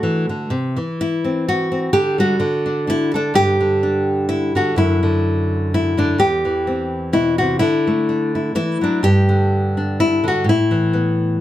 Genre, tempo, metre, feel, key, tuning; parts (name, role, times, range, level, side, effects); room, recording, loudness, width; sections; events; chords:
folk, solo fingerstyle acoustic guitar; 127 BPM; 3/4; swing 55% on 8ths; G major; A4 = 439 Hz
nylon-string guitar; solo; 0.0-11.4 s; E2 to A4; -16 LUFS; equal
moderate studio reverb, RT60 0.5 s; -16 LUFS; side -13 dB against mid
0.0-3.3 A section; 3.3-11.4 B section
0.0 D; 0.5 C; 1.9 Dsus4; 2.4 D; 3.3 G5; 4.8 D/F#; 6.2 Cmaj7#11/E; 7.6 Dadd9; 9.0 G5; 10.5 Asus2